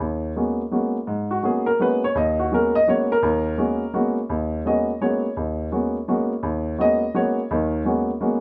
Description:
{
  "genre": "jazz",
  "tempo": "168 BPM",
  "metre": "3/4",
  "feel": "swing 64% on 8ths",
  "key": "G# minor",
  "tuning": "A4 = 440 Hz",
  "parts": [
    { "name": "warm baby grand piano", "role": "solo", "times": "0.0-8.4 s", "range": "D#2 to D#5", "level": "-22 LUFS", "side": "equal", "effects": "none" }
  ],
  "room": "moderate small room reverb, RT60 0.6 s",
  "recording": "none",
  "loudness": "-22 LUFS",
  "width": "mono",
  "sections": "0.0-1.1 A section; 1.1-8.4 B section",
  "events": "none",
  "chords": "0.0 G#m11"
}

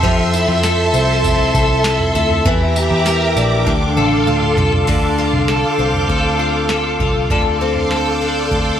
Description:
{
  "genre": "dream pop",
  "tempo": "99 BPM",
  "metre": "4/4",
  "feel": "straight",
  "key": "D minor",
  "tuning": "A4 = 439 Hz",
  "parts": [
    { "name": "string machine, violas", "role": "sustained chords", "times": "0.0-8.8 s", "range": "G4 to E6", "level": "-18 LUFS", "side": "right 1 dB", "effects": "ensemble chorus" },
    { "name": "picked twelve-string acoustic guitar", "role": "arpeggios", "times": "0.0-8.8 s", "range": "D3 to Bb4", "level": "-18 LUFS", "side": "left 2 dB", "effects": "wide subtle chorus, analog delay" },
    { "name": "vintage muted picked electric bass", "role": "bass", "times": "0.0-8.8 s", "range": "A1 to F2", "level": "-20 LUFS", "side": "equal", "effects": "none" },
    { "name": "booming analog drum machine", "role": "drums", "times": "0.0-8.7 s", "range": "crash cymbal, kick drum, snare drum, tambourine, toms", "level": "-20 LUFS", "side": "right 1 dB", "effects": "none" },
    { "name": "drifting glass-harmonics texture", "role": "texture", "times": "0.5-8.8 s", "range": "G5 to G6", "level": "-26 LUFS", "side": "right 1 dB", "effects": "chorus, built-in reverb, analog delay" }
  ],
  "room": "light reverb",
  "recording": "dry, gritty hardware recording, transformer saturation",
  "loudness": "-13 LUFS",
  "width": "side -9 dB against mid",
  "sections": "0.0-4.9 A section; 4.9-7.3 B section; 7.3-8.8 C section",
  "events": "drum fill 3.7-4.9",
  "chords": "0.0 Fmaj7; 2.5 Em7b5; 3.7 Dm7"
}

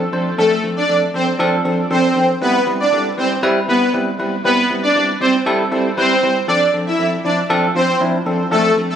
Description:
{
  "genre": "pop",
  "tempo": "118 BPM",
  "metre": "4/4",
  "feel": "straight",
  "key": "unclear",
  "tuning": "A4 = 440 Hz",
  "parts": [
    { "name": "bell-like tine electric piano", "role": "accompaniment", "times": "0.0-8.9 s", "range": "F3 to D5", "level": "-18 LUFS", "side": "equal", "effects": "none" },
    { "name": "soft supersaw", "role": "melody", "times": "0.4-9.0 s", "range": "A3 to E5", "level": "-16 LUFS", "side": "equal", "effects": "phaser, tape echo" }
  ],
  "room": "moderate lush hall reverb, RT60 2.4 s",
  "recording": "recorded on a phone in the room, studio ambience",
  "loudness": "-14 LUFS",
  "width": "side -9 dB against mid",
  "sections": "0.0-9.0 A section",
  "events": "none",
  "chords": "0.0 F6; 2.4 Cmaj7; 6.5 F6"
}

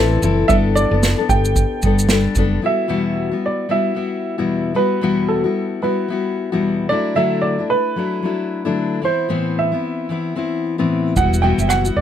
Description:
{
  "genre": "acoustic pop",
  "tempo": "112 BPM",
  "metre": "4/4",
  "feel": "swing 60% on 16ths",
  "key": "unclear",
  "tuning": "A4 = 441 Hz",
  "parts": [
    { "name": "warm upright piano", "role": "melody", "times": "0.0-12.0 s", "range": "A4 to G5", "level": "-21 LUFS", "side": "right 5 dB", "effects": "none" },
    { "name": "fingerpicked steel-string acoustic guitar", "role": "accompaniment", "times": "0.0-12.0 s", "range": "E2 to A4", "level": "-19 LUFS", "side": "left 4 dB", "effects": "none" },
    { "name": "nylon-string guitar", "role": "arpeggios", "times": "0.0-1.8, 11.2-12.0 s", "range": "G4 to F#5", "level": "-28 LUFS", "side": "right 2 dB", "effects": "none" },
    { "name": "woody fretless electric bass", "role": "bass", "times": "0.0-2.6, 11.2-12.0 s", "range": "E1 to A1", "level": "-18 LUFS", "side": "right 1 dB", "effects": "none" },
    { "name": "unplugged drum kit", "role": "drums", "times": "0.2-2.5, 11.2-12.0 s", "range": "kick drum, rim click, shaker, snare drum", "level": "-20 LUFS", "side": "right 1 dB", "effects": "none" }
  ],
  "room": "little or no reverb",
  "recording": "close, detailed microphones",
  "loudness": "-16 LUFS",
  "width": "side -10 dB against mid",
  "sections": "0.0-2.6 A section; 2.6-12.0 B section",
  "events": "none",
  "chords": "0.5 Gadd9; 2.6 Emadd9; 6.9 Dadd9; 9.0 Amadd9; 11.2 Emadd9"
}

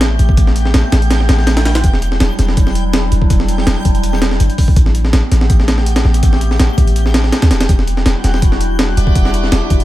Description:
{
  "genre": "drum and bass, jungle",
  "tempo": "164 BPM",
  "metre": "4/4",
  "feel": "straight",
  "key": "E minor",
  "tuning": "A4 = 444 Hz",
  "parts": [
    { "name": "warbly tape-like pad", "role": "sustained chords", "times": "0.0-9.8 s", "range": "F#3 to G4", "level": "-22 LUFS", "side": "equal", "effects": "chorus, built-in reverb" },
    { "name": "warm 808-style bass", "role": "bass", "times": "0.0-9.8 s", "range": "E1 to D2", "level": "-14 LUFS", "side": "equal", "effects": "none" },
    { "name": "breakbeat sampler-style drum kit", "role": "drums", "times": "0.0-9.8 s", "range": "hi-hat, kick drum, snare drum", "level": "-14 LUFS", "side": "equal", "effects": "none" },
    { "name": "backwards swelling texture", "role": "texture", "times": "0.0-9.8 s", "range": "F#5 to G6", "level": "-27 LUFS", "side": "equal", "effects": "built-in reverb" },
    { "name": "tonewheel organ", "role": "stabs", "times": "9.0-9.8 s", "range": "G3 to D5", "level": "-21 LUFS", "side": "right 3 dB", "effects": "slow rotary speaker, dub echo" }
  ],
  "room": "digital ambience",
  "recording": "none",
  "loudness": "-10 LUFS",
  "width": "side -15 dB against mid",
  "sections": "0.0-9.8 A section",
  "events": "none",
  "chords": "0.0 Am9; 1.8 Em9; 4.8 Am9; 7.7 Em9"
}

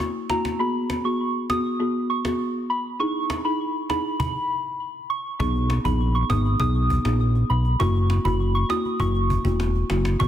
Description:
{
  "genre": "dancehall",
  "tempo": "100 BPM",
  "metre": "4/4",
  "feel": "straight",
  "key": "unclear",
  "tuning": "A4 = 437 Hz",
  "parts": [
    { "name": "folk marimba with medium mallets", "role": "accompaniment", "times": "0.0-10.3 s", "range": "A#3 to G#4", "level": "-26 LUFS", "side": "left 1 dB", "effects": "low-pass filter" },
    { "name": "cajon", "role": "drums", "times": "0.0-10.3 s", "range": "none", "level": "-30 LUFS", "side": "equal", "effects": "none" },
    { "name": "soft synth bell", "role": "melody", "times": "0.3-10.3 s", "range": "A#5 to D#6", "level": "-27 LUFS", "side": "right 1 dB", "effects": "chorus, low-pass filter, ping-pong delay" },
    { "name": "fat analog bass", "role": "bass", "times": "5.4-10.3 s", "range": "E1 to B1", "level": "-21 LUFS", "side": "equal", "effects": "none" }
  ],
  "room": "light reverb",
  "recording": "dense, heavily limited modern master",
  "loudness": "-21 LUFS",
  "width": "side -11 dB against mid",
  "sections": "0.0-5.4 A section; 5.4-10.3 B section",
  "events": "filter sweep 0.0-5.4; stop 4.2-5.4",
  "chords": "0.0 F#7; 0.6 G#m7; 3.0 Emaj7; 5.4 B6; 7.8 F#7"
}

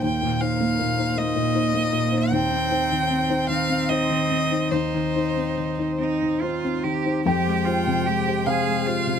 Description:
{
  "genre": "neoclassical piano and strings",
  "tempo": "47-53 BPM (dotted quarters)",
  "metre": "6/8",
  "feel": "rubato",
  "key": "F minor",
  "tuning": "A4 = 440 Hz",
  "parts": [
    { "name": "warm violin", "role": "melody", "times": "0.0-9.2 s", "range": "C5 to G5", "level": "-26 LUFS", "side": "equal", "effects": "none" },
    { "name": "rich cello", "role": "second line", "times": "0.0-9.2 s", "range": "Bb3 to Ab4", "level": "-28 LUFS", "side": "right 8 dB", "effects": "none" },
    { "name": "felt-muted upright piano", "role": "accompaniment", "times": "0.0-9.2 s", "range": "Eb2 to G5", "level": "-23 LUFS", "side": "left 3 dB", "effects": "none" },
    { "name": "hand-pumped harmonium", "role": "sustained chords", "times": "0.0-9.2 s", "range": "Ab3 to G5", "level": "-33 LUFS", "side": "right 2 dB", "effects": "none" }
  ],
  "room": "light reverb",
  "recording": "close, detailed microphones",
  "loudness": "-20 LUFS",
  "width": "side -8 dB against mid",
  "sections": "0.0-7.3 A section; 7.3-9.2 B section",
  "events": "none",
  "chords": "0.0 Eb5; 2.3 Cm/Eb; 7.3 Fmadd9"
}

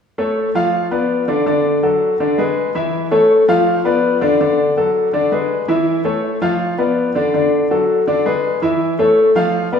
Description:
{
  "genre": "latin",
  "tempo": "164 BPM",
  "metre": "4/4",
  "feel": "straight",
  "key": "A major",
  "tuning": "A4 = 440 Hz",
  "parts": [
    { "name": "clear concert grand piano", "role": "solo", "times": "0.2-9.8 s", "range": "D3 to F5", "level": "-14 LUFS", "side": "left 1 dB", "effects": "none" }
  ],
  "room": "wet scoring stage reverb, RT60 1.6 s",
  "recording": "recorded in a church or concert hall, small room ambience",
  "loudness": "-14 LUFS",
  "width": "side -7 dB against mid",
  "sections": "0.0-9.8 A section",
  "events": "none",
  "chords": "0.0 A; 0.7 Dm6; 1.5 D; 2.2 E7; 2.9 A; 3.7 Dm6; 4.4 D; 5.1 E7; 5.9 A; 6.6 Dm6; 7.3 D; 8.1 E7; 8.8 A"
}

